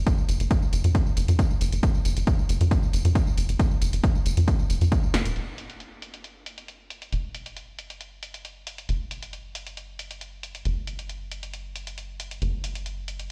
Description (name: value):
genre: driving peak-time techno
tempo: 136 BPM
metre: 4/4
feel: straight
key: unclear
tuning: A4 = 441 Hz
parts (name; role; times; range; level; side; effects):
- tight sequencer bass; bass; 0.0-13.3 s; E1 to F#2; -27 LUFS; equal; sidechain pumping
- electronic kick drum; drums; 0.1-5.0 s; none; -25 LUFS; equal; none
- punchy analog drum machine; drums; 0.1-13.3 s; hi-hat, snare drum, tambourine; -37 LUFS; equal; low-pass filter on hats, low-pass filter on perc, low-pass filter on snare
room: little or no reverb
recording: played on a big sound system in a bare room, stone room reverb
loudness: -25 LUFS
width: mono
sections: 0.0-5.4 A section; 5.4-13.3 B section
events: drum fill 5.1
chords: none